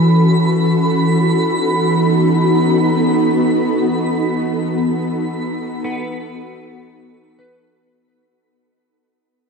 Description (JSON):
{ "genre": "ambient", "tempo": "free time", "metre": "none", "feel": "none", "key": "unclear", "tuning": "A4 = 441 Hz", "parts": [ { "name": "ethereal airy pad", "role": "sustained chords", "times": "0.0-8.0 s", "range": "E3 to A4", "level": "-17 LUFS", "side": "equal", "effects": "ensemble chorus, built-in reverb, shimmer reverb" }, { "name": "analog drone", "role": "drone", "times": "0.0-8.1 s", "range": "E3", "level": "-18 LUFS", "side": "equal", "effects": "chorus" }, { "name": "twinkling granular texture", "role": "texture", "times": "0.0-8.0 s", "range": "B5", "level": "-24 LUFS", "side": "right 1 dB", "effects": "built-in reverb, shimmer reverb" }, { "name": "clean electric guitar", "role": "arpeggios", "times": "5.8-8.5 s", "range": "B3 to B4", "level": "-35 LUFS", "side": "equal", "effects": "none" } ], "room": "wet huge ambient reverb, RT60 7.2 s", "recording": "none", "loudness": "-14 LUFS", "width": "side -5 dB against mid", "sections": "0.0-8.0 A section", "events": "fade-out 3.1-8.0", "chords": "0.0 F#m7; 0.6 B7" }